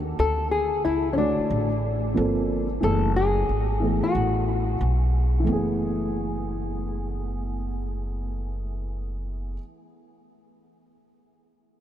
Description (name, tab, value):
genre	hip hop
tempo	91 BPM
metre	4/4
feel	swing 62% on 16ths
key	F# minor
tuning	A4 = 440 Hz
part	upright bass	bass	0.0-9.6 s	F#1 to D#2	-26 LUFS	equal	none
part	hollow-body jazz guitar	melody	0.2-5.0 s	C#4 to A4	-26 LUFS	left 3 dB	analog delay
part	dark upright piano	accompaniment	1.2-9.6 s	D3 to C#5	-28 LUFS	right 1 dB	none
room	moderate huge ambient reverb, RT60 7.9 s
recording	dreamy mix soaked in reverb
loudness	-23 LUFS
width	side -11 dB against mid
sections	0.0-5.5 A section; 5.5-8.1 B section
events	none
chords	0.2 Dmaj7; 2.2 Gm11; 2.8 F#m11